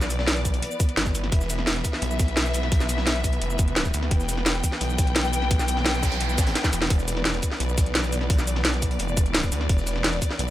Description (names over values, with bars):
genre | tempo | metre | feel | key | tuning
dark technical drum and bass | 172 BPM | 4/4 | straight | E phrygian | A4 = 440 Hz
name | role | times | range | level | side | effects
dark studio string section | sustained chords | 0.0-10.5 s | E3 to G5 | -30 LUFS | left 1 dB | sidechain pumping
snarling distorted saw bass | bass | 0.0-10.5 s | E1 to D2 | -26 LUFS | equal | distortion, tube saturation, sidechain pumping
drum and bass drum kit | drums | 0.0-10.5 s | hi-hat, shaker, snare drum | -26 LUFS | equal | none
crunchy breakbeat drum kit | drums | 0.1-10.5 s | hi-hat, snare drum | -37 LUFS | equal | none
electronic kick drum | drums | 0.5-10.3 s | none | -23 LUFS | equal | none
noise sweep | sound effects | 5.7-6.9 s | none | -34 LUFS | right 4 dB | none
room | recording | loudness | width
small room ambience | none | -21 LUFS | side -14 dB against mid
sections
0.0-10.5 A section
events
noise sweep 5.7-6.9; drum fill 6.6-6.9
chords
0.0 E5